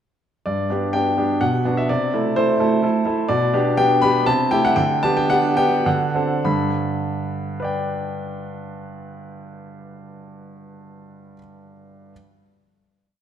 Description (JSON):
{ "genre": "classical-period piano sonatina", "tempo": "100-128 BPM", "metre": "3/4", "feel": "rubato", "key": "G major", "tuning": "A4 = 441 Hz", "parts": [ { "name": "clear grand piano", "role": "solo", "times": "0.5-12.1 s", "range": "G2 to B5", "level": "-18 LUFS", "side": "equal", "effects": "none" } ], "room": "wet recital hall reverb, RT60 1.7 s", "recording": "none", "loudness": "-17 LUFS", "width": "side -9 dB against mid", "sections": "0.5-6.4 A section; 6.4-9.9 final chord", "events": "slowing down 2.6-6.4", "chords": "0.5 G; 1.4 Bm; 1.9 Am/C; 3.3 G/B; 4.3 Am7/C; 4.8 G/D; 5.9 D7; 6.4 G" }